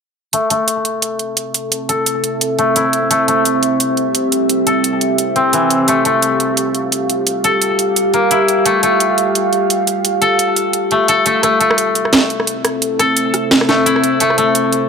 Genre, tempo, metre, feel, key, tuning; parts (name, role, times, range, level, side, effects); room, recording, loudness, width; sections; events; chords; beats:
half-time drum and bass; 173 BPM; 4/4; swing 57% on 16ths, half-time; A minor; A4 = 443 Hz
deep dark ambient pad; sustained chords; 1.3-14.9 s; C4 to F5; -17 LUFS; right 1 dB; chorus, built-in reverb
koto; arpeggios; 0.3-14.9 s; E3 to A4; -16 LUFS; left 3 dB; low-pass filter, analog delay
drum and bass drum kit; drums; 0.3-14.8 s; hi-hat, rim click, snare drum; -16 LUFS; right 2 dB; overdrive
light reverb; dry, gritty hardware recording; -12 LUFS; side -6 dB against mid
0.3-14.9 A section
filter sweep on koto 0.3-14.9
0.3 Am; 5.9 G7(no3); 11.4 Am
| 0.33 0.68 1.03 1.37 | 1.72 2.07 2.41 2.76 | 3.11 3.46 3.80 4.15 | 4.50 4.84 5.19 5.54 | 5.88 6.23 6.58 6.92 | 7.27 7.62 7.96 8.31 | 8.66 9.00 9.35 9.70 | 10.04 10.39 10.74 11.09 | 11.43 11.78 12.12 12.47 | 12.82 13.17 13.51 13.86 | 14.21 14.55